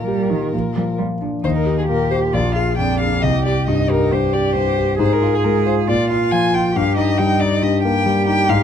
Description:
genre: quick classical-period movement for piano trio.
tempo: 136 BPM.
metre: 4/4.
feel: rubato.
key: Eb major.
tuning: A4 = 440 Hz.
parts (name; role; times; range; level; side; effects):
rich violin; melody; 0.0-8.6 s; Ab4 to Ab5; -22 LUFS; left 4 dB; none.
warm concert grand piano; accompaniment; 0.0-8.6 s; Bb1 to Ab4; -17 LUFS; left 2 dB; none.
rich cello; second line; 0.1-8.6 s; Eb3 to Ab4; -23 LUFS; right 8 dB; none.
room: light reverb.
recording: dark, warm production.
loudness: -15 LUFS.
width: side -8 dB against mid.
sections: 0.0-1.4 A section; 1.4-8.6 B section.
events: none.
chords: 0.0 Eb/Bb; 0.5 Bb; 1.4 Eb; 2.3 Bb7; 3.2 Cm; 5.0 Fm/Ab; 5.9 Bb5; 6.8 Eb/G.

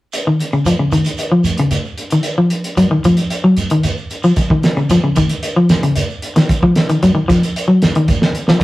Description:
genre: afrobeat.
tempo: 113 BPM.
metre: 4/4.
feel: straight.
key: unclear.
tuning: A4 = 440 Hz.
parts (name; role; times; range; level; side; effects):
cloth-damped thuddy drum kit; drums; 0.1-8.6 s; hi-hat, kick drum, snare drum; -18 LUFS; right 1 dB; none.
shekere; percussion; 0.1-8.6 s; none; -24 LUFS; right 3 dB; none.
electric guitar at the edge of break-up; arpeggios; 0.3-8.6 s; Db3 to Gb3; -13 LUFS; left 1 dB; none.
room: moderate small room reverb, RT60 0.6 s.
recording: rough rehearsal-room recording.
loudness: -12 LUFS.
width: side -17 dB against mid.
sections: 0.1-8.6 A section.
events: none.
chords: none.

